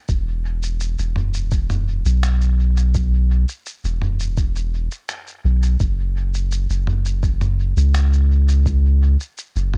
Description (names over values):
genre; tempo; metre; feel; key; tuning
ambient dub; 84 BPM; 4/4; straight; unclear; A4 = 438 Hz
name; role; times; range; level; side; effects
soft dub sub bass; bass; 0.1-9.8 s; E1 to C#2; -19 LUFS; equal; none
electronic kick drum; drums; 0.1-8.8 s; none; -24 LUFS; equal; overdrive
lo-fi sampler-style drum kit; drums; 0.1-9.8 s; finger snaps, shaker, toms; -30 LUFS; equal; overdrive, dub echo
room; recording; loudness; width
little or no reverb; home recording on cassette; -19 LUFS; mono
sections
0.0-9.8 A section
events
none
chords
none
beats
| 0.09 0.80 1.52 2.23 | 2.95 3.66 4.38 5.09 | 5.80 6.52 7.23 7.95 | 8.66 9.38